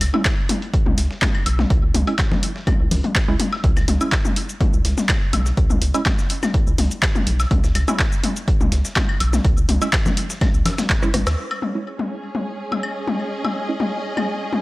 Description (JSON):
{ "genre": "minimal techno", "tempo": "124 BPM", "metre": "4/4", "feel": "swing 53% on 16ths", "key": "C# minor", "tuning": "A4 = 440 Hz", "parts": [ { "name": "rubbery square bass", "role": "bass", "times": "0.0-11.4 s", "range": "G#1 to D#2", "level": "-20 LUFS", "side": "equal", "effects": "sidechain pumping" }, { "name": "dusty soul sampler-style drum kit", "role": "drums", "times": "0.0-11.4 s", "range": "hi-hat, snare drum", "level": "-33 LUFS", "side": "equal", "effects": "high-pass filter on snare, high-pass filter on hats" }, { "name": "punchy analog drum machine", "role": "drums", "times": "0.0-11.4 s", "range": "cabasa, handclaps, hi-hat, rim click", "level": "-24 LUFS", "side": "equal", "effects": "none" }, { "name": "electronic claves, toms, woodblock and congas", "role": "percussion", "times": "0.0-14.6 s", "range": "none", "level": "-24 LUFS", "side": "left 2 dB", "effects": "overdrive, tape echo" }, { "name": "wavetable chord stab", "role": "stabs", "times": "0.1-13.8 s", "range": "G#3 to E4", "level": "-27 LUFS", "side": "right 3 dB", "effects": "tape echo" }, { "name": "electronic kick drum", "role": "drums", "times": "0.3-11.0 s", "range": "none", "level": "-19 LUFS", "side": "equal", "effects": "none" }, { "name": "pulsing gated texture", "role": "texture", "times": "11.7-14.6 s", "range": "G#3 to G#4", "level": "-35 LUFS", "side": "right 1 dB", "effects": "chorus, built-in reverb, sidechain pumping" }, { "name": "warm studio string section", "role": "texture", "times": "11.4-14.6 s", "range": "C#4 to D#5", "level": "-27 LUFS", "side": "right 1 dB", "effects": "sidechain pumping" } ], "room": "digital ambience", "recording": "dry, gritty hardware recording", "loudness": "-17 LUFS", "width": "side -20 dB against mid", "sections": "0.0-11.4 A section; 11.4-14.6 B section", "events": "drum fill 11.0-11.4; band accent 11.3; filter sweep on synth stab 11.4-14.6", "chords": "0.0 N.C.; 11.4 C#5", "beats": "0.25 0.73 1.22 | 1.70 2.19 2.67 3.15 | 3.64 4.12 4.61 5.09 | 5.57 6.06 6.54 7.03 | 7.51 7.99 8.48 8.96 | 9.45 9.93 10.41 10.90 | 11.38 11.86 12.35 12.83 | 13.32 13.80 14.28" }